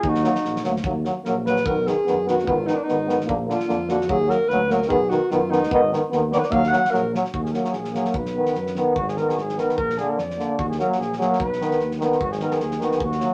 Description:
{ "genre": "balkan folk, Balkan brass band", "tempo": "148 BPM", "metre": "2/4", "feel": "swing 56% on 16ths", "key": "Eb harmonic minor", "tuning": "A4 = 436 Hz", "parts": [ { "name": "mellow flugelhorn", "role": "melody", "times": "0.0-0.7, 7.3-13.3 s", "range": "Gb4 to D5", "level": "-30 LUFS", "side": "equal", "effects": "none" }, { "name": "mellow alto saxophone", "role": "second line", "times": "0.0-7.1 s", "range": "D4 to Gb5", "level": "-25 LUFS", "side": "equal", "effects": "none" }, { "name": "mellow tuba", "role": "bass", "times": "0.0-13.2 s", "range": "Ab1 to F#2", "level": "-31 LUFS", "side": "equal", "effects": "none" }, { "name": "loose indie drum kit", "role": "percussion", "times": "0.0-13.3 s", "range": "kick drum, snare drum", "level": "-36 LUFS", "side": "equal", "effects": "none" }, { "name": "clear euphonium", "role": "accompaniment", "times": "0.2-13.3 s", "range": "D3 to Gb3", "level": "-28 LUFS", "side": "equal", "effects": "none" }, { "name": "mellow French horn", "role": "accompaniment", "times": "0.2-13.3 s", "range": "Bb3 to Cb4", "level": "-27 LUFS", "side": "equal", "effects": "none" } ], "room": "wet studio reverb, RT60 0.6 s", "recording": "none", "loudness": "-22 LUFS", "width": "mono", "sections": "0.8-7.3 A section; 7.3-13.3 B section", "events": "alto saxophone solo 0.8-7.3", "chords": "0.0 Ebm; 1.7 B; 2.5 Abm; 3.3 Bb; 4.1 Ebm; 4.9 B; 5.7 Abm; 6.5 Ebm; 8.1 B; 9.0 Abm; 9.8 Bb; 10.6 Ebm; 11.4 B; 12.2 Abm", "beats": "| 0.03 0.44 | 0.85 1.25 | 1.66 2.07 | 2.47 2.88 | 3.29 3.69 | 4.10 4.50 | 4.91 5.31 | 5.72 6.12 | 6.53 6.93 | 7.34 7.74 | 8.15 8.55 | 8.96 9.36 | 9.77 10.17 | 10.58 10.98 | 11.39 11.79 | 12.19 12.60 | 13.00" }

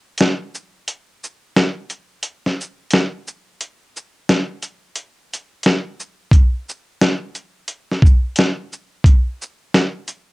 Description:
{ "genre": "hip hop", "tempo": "88 BPM", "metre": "4/4", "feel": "swing 64% on 16ths", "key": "none", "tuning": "none", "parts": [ { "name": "dusty soul sampler-style drum kit", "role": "drums", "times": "0.2-10.3 s", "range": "hi-hat, kick drum, shaker, snare drum", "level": "-14 LUFS", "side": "equal", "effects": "none" } ], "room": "moderate small room reverb, RT60 0.5 s", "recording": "home recording on cassette", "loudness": "-16 LUFS", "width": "side -22 dB against mid", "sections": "0.0-10.3 A section", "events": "break 0.0-6.3", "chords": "none", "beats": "0.18 | 0.86 1.55 2.23 2.91 | 3.59 4.27 4.96 5.64 | 6.32 7.00 7.68 8.36 | 9.05 9.73" }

